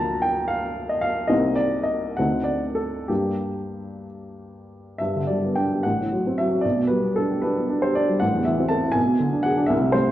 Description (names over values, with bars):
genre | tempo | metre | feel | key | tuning
classical, romantic character piece for solo piano | 61-82 BPM (dotted quarters) | 6/8 | rubato | G minor, G major from 5.0 s | A4 = 440 Hz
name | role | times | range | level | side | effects
warm upright piano | solo | 0.0-10.1 s | A1 to Bb5 | -20 LUFS | equal | none
room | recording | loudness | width
wet recital hall reverb, RT60 1.4 s | worn, warbling old tape, cassette tape, warbly pitch drift, nothing above 7.7 kHz | -20 LUFS | side -13 dB against mid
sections
0.0-5.0 A section; 5.0-10.1 B section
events
none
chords
0.0 Bb/D; 1.3 Cm7; 2.2 D5; 3.1 Gm; 5.0 G; 5.8 F#dim/A; 6.6 G/B; 8.2 Am; 9.0 G#dim/B